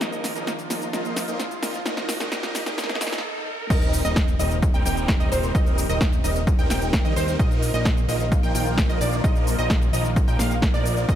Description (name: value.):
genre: EDM, festival progressive house.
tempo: 130 BPM.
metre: 4/4.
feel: straight.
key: Eb major.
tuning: A4 = 443 Hz.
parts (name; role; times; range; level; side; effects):
lush unison pad; sustained chords; 0.0-11.2 s; C3 to F4; -33 LUFS; equal; chorus, phaser, sidechain pumping.
supersaw chords; riff; 0.0-11.2 s; F3 to G5; -28 LUFS; right 1 dB; phaser, sidechain pumping, tape echo.
fat analog bass; bass; 0.0-11.2 s; Eb1 to Eb2; -28 LUFS; equal; sidechain pumping, high-pass filter.
big-room dance drum kit; drums; 0.0-11.2 s; crash cymbal, hi-hat, shaker, snare drum; -29 LUFS; equal; overdrive.
riser and swell; sound effects; 0.0-3.7 s; none; -35 LUFS; equal; none.
wide unison pluck; arpeggios; 3.7-11.2 s; C5 to G5; -30 LUFS; right 1 dB; cassette tape, sidechain pumping, tape echo.
electronic kick drum; drums; 3.7-11.2 s; none; -21 LUFS; equal; overdrive.
room: little or no reverb.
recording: high-pass filter.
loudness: -20 LUFS.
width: side -11 dB against mid.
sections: 0.0-3.7 A section; 3.7-11.2 B section.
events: build-up 0.0-3.7; drum fill 0.0-3.2; riser 0.0-3.7; swell 2.8-3.7; stop 3.2-3.7; drop 3.7-11.2.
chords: 0.0 Bbsus4; 3.7 Eb6; 7.4 Bbsus4.